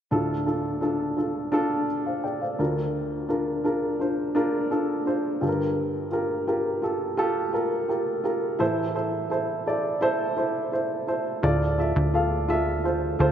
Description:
pop; 85 BPM; 4/4; straight; D minor; A4 = 439 Hz
dark upright piano; accompaniment; 0.1-13.3 s; D2 to G5; -24 LUFS; equal
plucky analog bass; bass; 11.4-13.3 s; D2; -25 LUFS; equal
wet plate reverb, RT60 3.4 s; dreamy mix soaked in reverb; -23 LUFS; side -9 dB against mid
0.1-11.4 A section; 11.4-13.3 B section
0.1 Dm; 2.6 Bb/D; 5.4 Gm7; 8.6 Am; 11.4 Dm

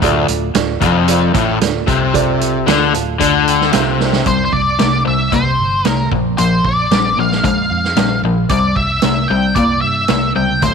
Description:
classic rock; 113 BPM; 4/4; straight; A4 = 439 Hz
dark upright piano; accompaniment; 0.0-4.2 s; F4 to A5; -21 LUFS; right 12 dB
crunchy overdriven guitar; riff; 0.0-10.7 s; D2 to Bb3; -17 LUFS; left 12 dB
sludgy distorted guitar; riff; 0.0-10.7 s; D2 to Bb3; -21 LUFS; right 12 dB; overdrive
fingered electric bass; bass; 0.0-10.7 s; D1 to G2; -22 LUFS; equal
vintage drum kit; drums; 0.0-10.7 s; hi-hat, kick drum, snare drum; -20 LUFS; right 6 dB
octave-fuzz lead guitar; melody; 4.3-10.7 s; C5 to G5; -16 LUFS; left 1 dB; distortion, slapback echo
light reverb, studio reverb; 1960s-style stereo with parts hard left and right; -12 LUFS; side -6 dB against mid
0.0-4.3 A section; 4.3-10.7 B section
upright piano fill 2.7-4.3; drum fill 4.0
0.0 Dm; 4.3 C5; 6.1 Bb; 8.5 C

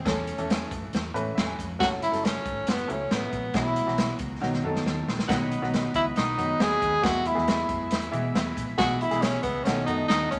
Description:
uptempo 1960s-style soul; 137 BPM; 4/4; straight; E major; A4 = 440 Hz
breathy tenor saxophone; melody; 0.0-10.4 s; B3 to G#4; -29 LUFS; equal
bright upright piano; accompaniment; 0.1-10.4 s; D#3 to G#5; -33 LUFS; equal
vintage muted fingered electric bass; bass; 0.1-10.4 s; F#1 to B2; -38 LUFS; equal
swinging big-band drum kit; drums; 0.1-10.4 s; hi-hat, kick drum, snare drum; -31 LUFS; equal
percussive tonewheel organ; sustained chords; 5.3-10.4 s; B4 to B5; -38 LUFS; equal; slow rotary speaker
wet club reverb, RT60 0.7 s; -26 LUFS; mono
0.0-10.4 A section
upright piano fill 1.1-1.8, 8.1-8.8; drum fill 4.4-5.3
0.1 A/E; 1.8 F#m; 3.5 Bsus4; 4.4 B; 7.0 E; 8.8 E/B; 9.7 B7

